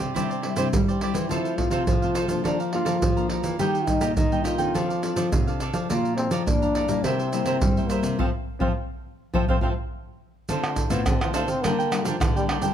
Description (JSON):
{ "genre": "samba and choro", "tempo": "104 BPM", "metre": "4/4", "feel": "straight", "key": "F major", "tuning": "A4 = 440 Hz", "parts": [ { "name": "cavaquinho", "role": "accompaniment", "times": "0.0-12.7 s", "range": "D4 to Bb5", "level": "-30 LUFS", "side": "right 6 dB", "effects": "none" }, { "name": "nylon-string guitar", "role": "accompaniment", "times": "0.0-12.7 s", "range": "F2 to A4", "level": "-30 LUFS", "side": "left 9 dB", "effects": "none" }, { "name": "nylon-string guitar", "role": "bass", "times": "0.0-12.7 s", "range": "A2 to Bb3", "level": "-28 LUFS", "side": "left 1 dB", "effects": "none" }, { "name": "egg shaker, surdo, pandeiro and tamborim", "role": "percussion", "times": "0.2-12.7 s", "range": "none", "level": "-26 LUFS", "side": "right 2 dB", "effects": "none" }, { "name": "breathy trombone", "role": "melody", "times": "1.3-12.4 s", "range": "E3 to G4", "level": "-28 LUFS", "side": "left 1 dB", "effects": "none" } ], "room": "light reverb", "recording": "close, detailed microphones", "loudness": "-22 LUFS", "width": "side -9 dB against mid", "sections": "0.0-10.5 A section; 10.5-12.7 B section", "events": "band accent 8.2-10.5; trombone solo 10.5-12.7", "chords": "0.0 Cadd9; 1.3 F; 2.5 Bbmaj7/F; 3.6 Eb; 4.8 F6; 5.9 Bbmaj7; 7.0 C7; 8.2 F; 10.5 Dm7; 11.6 Gm/D", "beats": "0.16 0.73 | 1.31 1.88 2.46 3.03 | 3.60 4.18 4.75 5.33 | 5.90 6.48 7.05 7.62 | 8.20 8.77 9.35 9.92 | 10.49 11.07 11.64 12.22" }